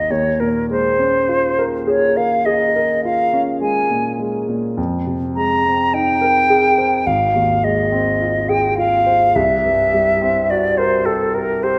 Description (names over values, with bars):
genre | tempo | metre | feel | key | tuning
classical, impressionist duo for flute and grand piano | 52 BPM | 4/4 | rubato | unclear | A4 = 441 Hz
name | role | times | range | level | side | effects
silver concert flute | melody | 0.0-11.8 s | A4 to Bb5 | -18 LUFS | equal | none
clear grand piano | accompaniment | 0.0-11.8 s | Ab1 to C5 | -22 LUFS | equal | none
room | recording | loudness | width
wet scoring stage reverb, RT60 1.6 s | none | -17 LUFS | mono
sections
0.0-11.8 A section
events
none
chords
0.1 Eb11; 4.8 Fm11; 7.1 Ab6; 9.4 C7#11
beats
| 0.10 1.28 2.46 3.62 | 4.78 5.94 7.08 8.21 | 9.36 10.50 11.63